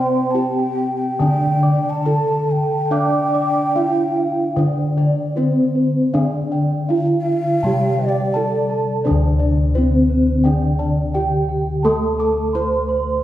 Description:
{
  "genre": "gamelan",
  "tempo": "70-86 BPM",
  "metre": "4/4",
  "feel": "straight",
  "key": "D slendro",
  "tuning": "A4 = 439 Hz",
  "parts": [
    { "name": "gamelan-type bronze metallophone", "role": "melody", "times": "0.0-13.2 s", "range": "C4-25c to D5", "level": "-20 LUFS", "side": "right 1 dB", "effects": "none" },
    { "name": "breathy mellow bansuri", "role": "second line", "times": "0.0-8.9 s", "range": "D5 to A5", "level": "-23 LUFS", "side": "equal", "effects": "none" },
    { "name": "gamelan-type bronze metallophone", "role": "accompaniment", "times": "0.0-13.2 s", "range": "D3 to D4", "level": "-22 LUFS", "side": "left 1 dB", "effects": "none" },
    { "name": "gamelan-type bossed gongs", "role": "arpeggios", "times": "0.0-12.9 s", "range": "C5-25c to D6", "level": "-30 LUFS", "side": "left 2 dB", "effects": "none" },
    { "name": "gamelan-type bronze metallophone", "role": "arpeggios", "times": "0.0-13.2 s", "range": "C5-25c to D6", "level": "-28 LUFS", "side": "right 2 dB", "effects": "none" },
    { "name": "gamelan-type bossed gongs", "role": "bass", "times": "0.0-13.2 s", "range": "D2 to D5", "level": "-22 LUFS", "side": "equal", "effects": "none" }
  ],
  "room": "wet recital hall reverb, RT60 1.6 s",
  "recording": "recorded in a church or concert hall",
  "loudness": "-16 LUFS",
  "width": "side -13 dB against mid",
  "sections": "0.0-9.1 A section; 9.1-13.2 B section",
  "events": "none",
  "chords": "none",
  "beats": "0.36 1.21 2.06 | 2.91 3.75 4.57 5.37 | 6.14 6.90 7.64 8.36 | 9.07 9.77 10.46 11.16 | 11.86 12.55"
}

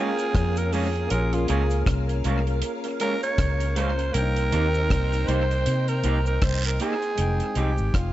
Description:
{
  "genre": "lovers rock reggae",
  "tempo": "79 BPM",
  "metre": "4/4",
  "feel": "swing 59% on 16ths",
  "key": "F minor",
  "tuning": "A4 = 440 Hz",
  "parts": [
    { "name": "growling alto saxophone", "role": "melody", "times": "0.0-8.1 s", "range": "F4 to Db5", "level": "-28 LUFS", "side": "right 2 dB", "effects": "tape echo" },
    { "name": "soft string machine", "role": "second line", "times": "0.0-7.1 s", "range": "Db4 to G5", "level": "-34 LUFS", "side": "left 1 dB", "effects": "phaser, ensemble chorus" },
    { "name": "barky tine electric piano", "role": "accompaniment", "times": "0.0-8.1 s", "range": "Ab3 to G5", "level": "-33 LUFS", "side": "left 3 dB", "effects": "overdrive" },
    { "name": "electric guitar through a small old amp", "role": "stabs", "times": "0.0-7.7 s", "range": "F3 to Bb4", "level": "-31 LUFS", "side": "right 2 dB", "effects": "none" },
    { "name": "deep reggae drum kit", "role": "drums", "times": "0.2-8.1 s", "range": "hi-hat, kick drum, rim click", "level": "-27 LUFS", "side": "equal", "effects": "tape echo" },
    { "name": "cabasa and guiro", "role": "percussion", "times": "0.2-7.9 s", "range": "none", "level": "-37 LUFS", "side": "right 6 dB", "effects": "none" },
    { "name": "vintage muted fingered electric bass", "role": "bass", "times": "0.3-8.1 s", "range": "F1 to C3", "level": "-24 LUFS", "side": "equal", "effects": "none" }
  ],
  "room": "small room ambience",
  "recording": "nothing above 7.9 kHz, faint mains hum",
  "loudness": "-21 LUFS",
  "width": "side -14 dB against mid",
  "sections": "0.0-7.2 A section",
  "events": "alto saxophone solo 0.0-7.2",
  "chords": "0.0 Eb9sus4 (rootless); 1.1 Bbm7; 4.1 Cm7; 7.2 Fm7",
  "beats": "0.35 | 1.11 1.87 2.63 3.39 | 4.15 4.91 5.67 6.42 | 7.18 7.94"
}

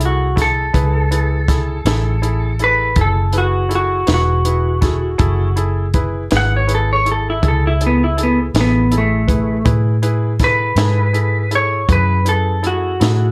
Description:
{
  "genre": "slow blues",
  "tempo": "54 BPM (dotted quarters)",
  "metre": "12/8",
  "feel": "straight",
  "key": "F# minor",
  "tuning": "A4 = 439 Hz",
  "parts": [
    { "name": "clear baby grand piano", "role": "accompaniment", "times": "0.0-13.3 s", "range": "E4 to B4", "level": "-26 LUFS", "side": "equal", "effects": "none" },
    { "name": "vintage muted fingered electric bass", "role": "bass", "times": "0.0-13.3 s", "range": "E1 to A2", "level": "-19 LUFS", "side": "equal", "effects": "none" },
    { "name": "compact cocktail drum kit", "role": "drums", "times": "0.0-13.2 s", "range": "hi-hat, kick drum, snare drum", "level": "-22 LUFS", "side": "equal", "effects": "none" },
    { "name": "clean lap steel guitar", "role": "melody", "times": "0.1-13.3 s", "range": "A3 to F#5", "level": "-20 LUFS", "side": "equal", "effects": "none" }
  ],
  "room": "light reverb",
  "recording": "none",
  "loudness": "-16 LUFS",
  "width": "mono",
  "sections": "0.0-13.3 A section",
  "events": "electric slide guitar solo 0.0-13.3",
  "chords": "0.0 F#m9",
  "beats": "| 0.74 1.86 2.97 4.09 | 5.20 6.32 7.43 8.55 | 9.66 10.78 11.89 13.01"
}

